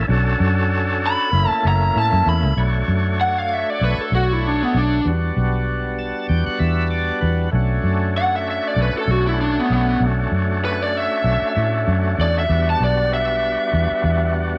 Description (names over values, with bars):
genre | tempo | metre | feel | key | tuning
straight-eighth soul blues | 97 BPM | 4/4 | swing 55% on 16ths | B minor | A4 = 441 Hz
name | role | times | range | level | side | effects
tonewheel organ | accompaniment | 0.0-14.6 s | G3 to A5 | -26 LUFS | equal | slow rotary speaker, overdrive
vintage muted fingered electric bass | bass | 0.0-14.5 s | F#1 to A2 | -22 LUFS | equal | none
lead guitar through a small cranked amp | melody | 1.1-14.3 s | B3 to B5 | -23 LUFS | equal | overdrive, slapback echo
room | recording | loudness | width
light reverb, digital ambience | none | -19 LUFS | mono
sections
0.0-2.6 A section; 2.6-14.6 B section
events
lead electric guitar solo 0.0-2.6; tonewheel organ fill 5.7-7.5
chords
0.1 Bm7; 1.3 F#7#9; 2.6 Bm7; 5.0 Em7; 7.5 Bm7; 12.5 Em7